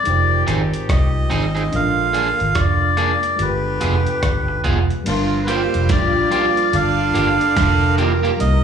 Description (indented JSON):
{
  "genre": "lovers rock reggae",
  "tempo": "72 BPM",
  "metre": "4/4",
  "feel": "swing 61% on 16ths",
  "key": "unclear",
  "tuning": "A4 = 440 Hz",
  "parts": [
    { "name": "melodica", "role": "melody", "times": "0.0-8.6 s", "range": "B4 to F5", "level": "-20 LUFS", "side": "equal", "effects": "tape echo, slapback echo" },
    { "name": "mellow FM electric piano", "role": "accompaniment", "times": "0.0-8.6 s", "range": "G3 to C5", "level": "-27 LUFS", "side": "left 2 dB", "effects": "chorus, slapback echo" },
    { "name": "clear horn section", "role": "second line", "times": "0.1-8.2 s", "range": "D3 to G4", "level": "-25 LUFS", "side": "equal", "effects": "slapback echo" },
    { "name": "vintage muted fingered electric bass", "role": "bass", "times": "0.1-8.6 s", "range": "F1 to C2", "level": "-20 LUFS", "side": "right 1 dB", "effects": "none" },
    { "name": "dusty soul sampler-style drum kit", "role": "drums", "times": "0.1-8.6 s", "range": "crash cymbal, hi-hat, kick drum, rim click, snare drum", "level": "-23 LUFS", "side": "right 1 dB", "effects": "overdrive" },
    { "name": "electric guitar at the edge of break-up", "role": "stabs", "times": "0.5-8.3 s", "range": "Bb3 to Ab4", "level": "-22 LUFS", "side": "right 5 dB", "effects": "tube saturation, slapback echo" },
    { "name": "phased string machine", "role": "second line", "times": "5.4-8.6 s", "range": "F4 to Bb5", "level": "-24 LUFS", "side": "right 3 dB", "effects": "ensemble chorus, phaser, tape echo, slapback echo" }
  ],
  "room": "light reverb",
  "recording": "live gig heard through the venue's PA, club reverb, studio reverb",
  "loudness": "-15 LUFS",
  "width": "side -7 dB against mid",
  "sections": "0.0-5.1 A section; 5.1-8.6 B section",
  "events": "none",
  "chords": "0.1 Fm7; 1.7 Bb7; 3.4 G7b9; 5.1 Gm7"
}